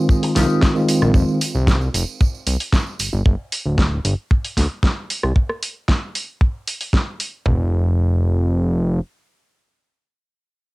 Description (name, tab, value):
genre	nu-disco, nu disco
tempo	114 BPM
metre	4/4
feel	straight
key	unclear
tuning	A4 = 439 Hz
part	tine electric piano	accompaniment	0.0-1.4 s	Eb3 to F4	-19 LUFS	equal	fast stereo tremolo, cassette tape, tape echo
part	electric guitar with an envelope filter	riff	0.1-1.1 s	Eb4 to G4	-30 LUFS	left 8 dB	lush chorus, vintage 12-bit sampler grit, cassette tape, tape echo
part	damped 70s drum kit	drums	0.1-7.6 s	kick drum, toms	-16 LUFS	equal	cassette tape
part	tambourine	percussion	0.1-3.2 s	none	-33 LUFS	right 8 dB	none
part	pop drum kit	drums	0.2-7.3 s	hi-hat, rim click, snare drum	-23 LUFS	equal	cassette tape
part	fat analog bass	bass	0.4-9.0 s	D1 to D2	-18 LUFS	equal	tube saturation
room	light reverb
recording	home recording on cassette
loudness	-17 LUFS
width	side -22 dB against mid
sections	0.0-7.5 A section; 7.5-10.7 B section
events	filter sweep on analog synth bass 0.0-5.4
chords	0.0 Fm7; 3.0 G5; 5.4 N.C.